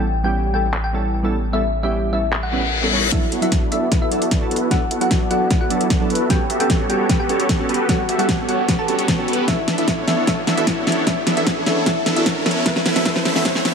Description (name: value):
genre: future bass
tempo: 151 BPM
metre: 4/4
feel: half-time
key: D major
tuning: A4 = 440 Hz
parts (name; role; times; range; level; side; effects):
- thumb-piano-like synth pluck; melody; 0.0-13.6 s; E4 to A5; -24 LUFS; left 1 dB; lush chorus, cassette tape, sidechain pumping, ping-pong delay
- glassy digital keys; accompaniment; 0.0-13.5 s; E3 to C#5; -25 LUFS; right 3 dB; chorus, sidechain pumping, ping-pong delay
- long sustained 808-style bass; bass; 0.0-3.1 s; A1; -23 LUFS; equal; sidechain pumping
- pop drum kit; drums; 0.7-13.7 s; handclaps, hi-hat, snare drum; -21 LUFS; equal; low-pass filter on snare, small room ambience, low-pass filter on hats
- reverse cymbal and riser; sound effects; 2.5-13.7 s; none; -27 LUFS; left 2 dB; none
- supersaw chords; riff; 3.1-13.7 s; B3 to F#5; -22 LUFS; equal; sidechain pumping, low-pass filter
- electronic kick drum; drums; 3.1-13.5 s; none; -22 LUFS; equal; small room ambience
room: light reverb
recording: high-pass filter, low-pass filter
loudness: -16 LUFS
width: side -6 dB against mid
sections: 0.0-3.1 A section; 3.1-13.7 B section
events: filter sweep 0.0-3.1, 3.1-13.7; reverse cymbal 2.5-3.1; build-up 3.1-13.7; drum fill 3.1-13.7; filter sweep on supersaw synth 3.1-13.7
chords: 0.0 A9; 3.1 D69; 6.3 Gmaj9#11; 9.5 Bm11; 12.5 Aadd9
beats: 0.34 0.74 1.14 | 1.53 1.93 2.33 2.73 | 3.12 3.52 3.92 4.31 | 4.71 5.11 5.51 5.90 | 6.30 6.70 7.09 7.49 | 7.89 8.29 8.69 9.08 | 9.48 9.88 10.27 10.67 | 11.07 11.47 11.86 12.26 | 12.66 13.06 13.45